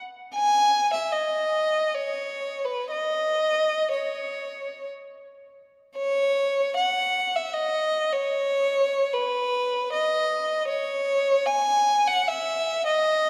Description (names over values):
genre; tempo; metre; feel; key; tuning
classical, free, expressive piece for unaccompanied violin; 44-86 BPM; 3/4; rubato; C# minor; A4 = 440 Hz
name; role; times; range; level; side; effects
rich violin; solo; 0.3-13.3 s; B4 to G#5; -25 LUFS; equal; none
room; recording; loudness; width
wet church reverb, RT60 2.9 s; none; -25 LUFS; mono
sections
0.0-6.0 A section; 6.0-13.3 B section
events
none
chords
none